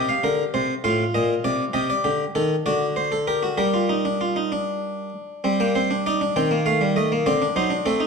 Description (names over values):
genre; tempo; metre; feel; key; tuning
classical, baroque-style 3-part fugue for harpsichord; 66 BPM (dotted quarters); 6/8; straight; G minor; A4 = 440 Hz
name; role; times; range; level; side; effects
harpsichord; solo; 0.0-8.1 s; A2 to G5; -20 LUFS; equal; none
room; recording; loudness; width
moderate recital hall reverb, RT60 1.6 s; dark, warm production, tape saturation; -20 LUFS; side -5 dB against mid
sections
0.0-5.4 A section; 5.4-8.1 B section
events
none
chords
0.0 C5; 0.8 F/A; 1.7 Am7b5/C; 2.6 D7; 3.6 Gm; 6.4 Am7b5/Eb; 7.3 D7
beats
0.84 | 1.74 2.65 | 3.58 4.51 | 5.44 6.36 | 7.26